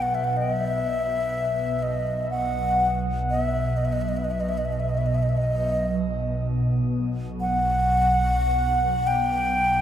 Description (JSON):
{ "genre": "world meditative, free-time meditation music", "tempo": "free time", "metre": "none", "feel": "none", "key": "B major", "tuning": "A4 = 439 Hz", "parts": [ { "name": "breathy bright xiao", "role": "melody", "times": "0.0-9.8 s", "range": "D#5 to G5", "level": "-24 LUFS", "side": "left 1 dB", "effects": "shimmer reverb, tape echo" }, { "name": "ethereal airy pad", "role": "drone", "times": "0.0-9.8 s", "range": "B1", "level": "-25 LUFS", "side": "right 1 dB", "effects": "ensemble chorus, built-in reverb, phaser" }, { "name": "bronze singing bowl", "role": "texture", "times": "0.0-3.5 s", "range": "B4 to E5", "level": "-43 LUFS", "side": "left 3 dB", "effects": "none" } ], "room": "wet spring reverb, RT60 2.3 s", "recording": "echo-heavy mix", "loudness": "-21 LUFS", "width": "side -10 dB against mid", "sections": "0.0-9.8 A section", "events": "none", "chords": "none" }